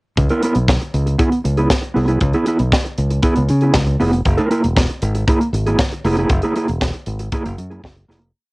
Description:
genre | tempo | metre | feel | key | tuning
disco | 118 BPM | 4/4 | straight | C# dorian | A4 = 439 Hz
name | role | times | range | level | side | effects
mellow electric guitar | accompaniment | 0.2-8.3 s | A#3 to A#4 | -18 LUFS | right 1 dB | tremolo, cassette tape
modern bright fingered electric bass | bass | 0.2-8.3 s | E1 to C#3 | -18 LUFS | equal | none
tight funk drum kit | drums | 0.2-8.3 s | hi-hat, kick drum, snare drum | -18 LUFS | equal | cassette tape
room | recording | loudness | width
light reverb | home recording on cassette | -15 LUFS | side -25 dB against mid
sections
0.2-8.3 groove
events
fade-out 6.3-8.3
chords
0.2 C#m7; 4.3 F#9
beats
| 0.17 0.68 1.19 1.71 | 2.22 2.73 3.24 3.75 | 4.26 4.77 5.28 5.79 | 6.30 6.81 7.32 7.83

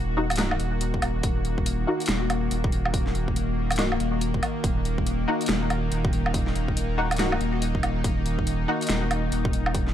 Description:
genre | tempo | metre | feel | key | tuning
deep dubstep | 141 BPM | 4/4 | swing 61% on 16ths, half-time | Eb minor | A4 = 440 Hz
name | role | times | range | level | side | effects
bowed-like drone | sustained chords | 0.0-9.9 s | Eb3 to Gb4 | -29 LUFS | left 2 dB | built-in reverb
filtered dub chord stab | stabs | 0.0-9.9 s | Bb3 to Gb4 | -30 LUFS | left 1 dB | ensemble chorus, dub echo
saturated sub bass | bass | 0.0-9.9 s | Eb1 | -27 LUFS | equal | tube saturation
dubstep drum kit | drums | 0.3-9.9 s | hi-hat, snare drum, woodblock | -28 LUFS | right 1 dB | none
electronic kick drum | drums | 0.9-9.8 s | none | -27 LUFS | equal | none
room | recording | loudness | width
light reverb | dry, gritty hardware recording | -23 LUFS | side -10 dB against mid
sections
0.0-9.9 A section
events
none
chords
0.0 Ebm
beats
0.38 0.81 | 1.24 1.66 2.09 2.51 | 2.94 3.36 3.79 4.21 | 4.64 5.07 5.49 5.92 | 6.34 6.77 7.19 7.62 | 8.04 8.47 8.89 9.32 | 9.75

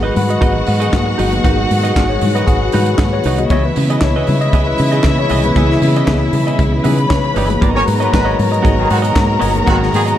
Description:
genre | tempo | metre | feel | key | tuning
disco | 117 BPM | 4/4 | straight | unclear | A4 = 438 Hz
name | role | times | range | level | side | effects
clear studio violin section | second line | 0.0-10.2 s | E4 to B5 | -20 LUFS | left 1 dB | none
clean electric guitar | accompaniment | 0.0-10.2 s | B3 to F#5 | -24 LUFS | right 7 dB | none
tine electric piano | accompaniment | 0.0-10.2 s | E3 to D#5 | -20 LUFS | left 4 dB | none
warm studio string section | sustained chords | 0.0-10.2 s | B2 to F#4 | -21 LUFS | right 1 dB | none
fingered electric bass | bass | 0.0-10.1 s | G1 to C#3 | -17 LUFS | equal | none
tight funk drum kit | drums | 0.2-10.2 s | handclaps, hi-hat, kick drum, snare drum | -18 LUFS | right 1 dB | none
congas | percussion | 0.2-10.1 s | none | -25 LUFS | left 5 dB | none
clear horn section | stabs | 7.8-10.0 s | D#3 to C#5 | -20 LUFS | right 2 dB | none
room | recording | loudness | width
light reverb, small room ambience | dark, warm production | -12 LUFS | side -11 dB against mid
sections
0.0-10.2 A section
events
tine electric piano solo 0.0-10.2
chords
0.0 G#m7; 3.5 C#m9; 7.6 G#m7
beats
0.42 0.93 | 1.45 1.96 2.48 2.99 | 3.50 4.02 4.53 5.05 | 5.56 6.08 6.59 7.11 | 7.62 8.13 8.65 9.16 | 9.68

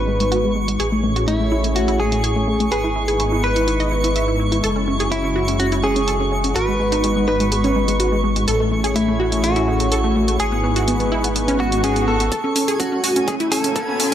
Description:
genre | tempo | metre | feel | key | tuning
progressive house | 125 BPM | 4/4 | straight | unclear | A4 = 440 Hz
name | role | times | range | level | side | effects
direct-recorded clean electric guitar | melody | 0.0-14.1 s | E4 to B4 | -24 LUFS | equal | digital delay
soft synth bell | second line | 0.0-13.0 s | E4 to B4 | -29 LUFS | left 1 dB | chorus, phaser, sidechain pumping, digital delay
warm analog pad | sustained chords | 0.0-14.1 s | G#3 to C#5 | -25 LUFS | left 1 dB | chorus, sidechain pumping
wide unison pluck | arpeggios | 0.0-14.1 s | G#3 to E5 | -22 LUFS | equal | cassette tape, sidechain pumping, digital delay
dark detuned saw bass | bass | 0.0-12.3 s | F#1 to A1 | -22 LUFS | equal | sidechain pumping
twinkling granular texture | texture | 0.0-14.1 s | G#5 to C#6 | -28 LUFS | right 3 dB | built-in reverb, sidechain pumping
electronic hi-hat | drums | 0.2-14.1 s | none | -25 LUFS | equal | high-pass filter on hats, low-pass filter on hats, high-pass filter on snare, low-pass filter on snare
swell and riser | sound effects | 11.6-14.1 s | none | -28 LUFS | left 2 dB | none
electronic kick drum | drums | 12.3-13.9 s | none | -28 LUFS | equal | high-pass filter on kick
room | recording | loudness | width
moderate lush hall reverb, RT60 1.9 s | none | -16 LUFS | side -10 dB against mid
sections
0.0-12.3 A section; 12.3-14.1 B section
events
filter sweep on synth pluck 0.0-12.3; swell 11.6-12.3; build-up 12.3-14.1; riser 12.3-14.1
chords
0.0 G#m7; 0.8 Amaj7; 2.7 Emaj7/G#; 4.6 F#sus2; 6.6 G#m7; 8.5 Amaj7; 10.4 Emaj7/G#; 12.3 F#m9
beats
0.32 | 0.80 1.28 1.76 2.24 | 2.72 3.20 3.68 4.16 | 4.64 5.12 5.60 6.08 | 6.56 7.04 7.52 8.00 | 8.48 8.96 9.44 9.92 | 10.40 10.88 11.36 11.84 | 12.32 12.80 13.28 13.76

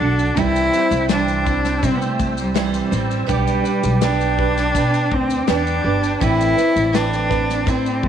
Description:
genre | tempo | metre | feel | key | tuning
acoustic pop | 82 BPM | 4/4 | straight | G major | A4 = 440 Hz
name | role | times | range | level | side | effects
rich cello | melody | 0.0-8.1 s | G3 to E4 | -20 LUFS | left 2 dB | none
picked steel-string acoustic guitar | accompaniment | 0.0-8.1 s | A2 to C5 | -22 LUFS | right 12 dB | none
tonewheel organ | sustained chords | 0.0-8.1 s | A4 to E6 | -30 LUFS | left 1 dB | chorus vibrato, slow rotary speaker
upright bass | bass | 0.0-8.1 s | G1 to C3 | -22 LUFS | left 1 dB | none
loose indie drum kit | drums | 0.2-8.1 s | kick drum, shaker, snare drum | -26 LUFS | left 5 dB | none
room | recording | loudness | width
light reverb, small room ambience | 1960s-style stereo | -16 LUFS | side -9 dB against mid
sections
0.0-8.1 A section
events
none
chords
0.4 C; 3.3 G/B; 6.2 Amadd9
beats
| 0.38 1.10 1.83 2.56 | 3.29 4.02 4.75 5.48 | 6.21 6.94 7.67

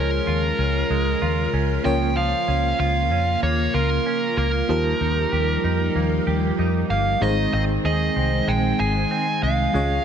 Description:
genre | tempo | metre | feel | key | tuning
pop | 95 BPM | 4/4 | straight | Ab major | A4 = 440 Hz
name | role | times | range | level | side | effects
dark smooth lead guitar | melody | 0.0-10.0 s | Bb4 to Ab5 | -24 LUFS | right 2 dB | overdrive, digital delay
FM electric piano with tremolo | accompaniment | 0.0-10.0 s | Ab3 to Db5 | -29 LUFS | left 1 dB | phaser
string machine, full ensemble | sustained chords | 0.0-10.0 s | Db3 to F4 | -26 LUFS | equal | ensemble chorus
direct-recorded clean electric guitar | riff | 0.0-10.0 s | Eb3 to Ab4 | -29 LUFS | right 4 dB | lush chorus
vintage muted fingered electric bass | bass | 0.0-10.0 s | G1 to F2 | -23 LUFS | left 1 dB | none
room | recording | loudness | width
light reverb | none | -19 LUFS | side -8 dB against mid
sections
0.0-10.0 A section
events
none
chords
0.0 Db; 1.9 Bbm/Db; 4.7 Ebadd9; 7.2 Ab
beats
0.27 0.90 1.53 | 2.17 2.80 3.43 4.06 | 4.69 5.32 5.96 6.59 | 7.22 7.85 8.48 9.11 | 9.74

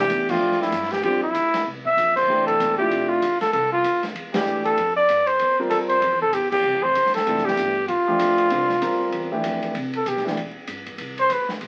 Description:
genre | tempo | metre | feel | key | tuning
modal jazz | 193 BPM | 4/4 | swing 60% on 8ths | F major | A4 = 441 Hz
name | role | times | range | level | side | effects
warm trumpet | melody | 0.0-11.5 s | E4 to E5 | -22 LUFS | equal | none
clear concert grand piano | accompaniment | 0.0-10.4 s | D3 to Bb4 | -29 LUFS | equal | none
upright bass | bass | 0.0-11.7 s | E1 to C3 | -38 LUFS | equal | none
open jazz drum kit | drums | 0.1-11.7 s | crash cymbal, hi-hat, kick drum, ride cymbal, snare drum | -34 LUFS | equal | none
room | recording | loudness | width
moderate large studio reverb, RT60 1.0 s | very old 78 rpm record, vinyl crackle | -21 LUFS | mono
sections
0.0-9.8 A section; 9.8-11.7 B section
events
band accent 0.3, 2.1, 4.3, 6.5; trumpet solo 9.8-11.7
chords
0.0 Fmaj9; 9.8 Cmaj9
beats
0.11 0.42 0.73 | 1.04 1.35 1.66 1.98 | 2.29 2.60 2.91 3.22 | 3.53 3.84 4.15 4.46 | 4.78 5.09 5.40 5.71 | 6.02 6.33 6.64 6.95 | 7.26 7.58 7.89 8.20 | 8.51 8.82 9.13 9.44 | 9.75 10.06 10.37 10.68 | 10.99 11.31 11.62

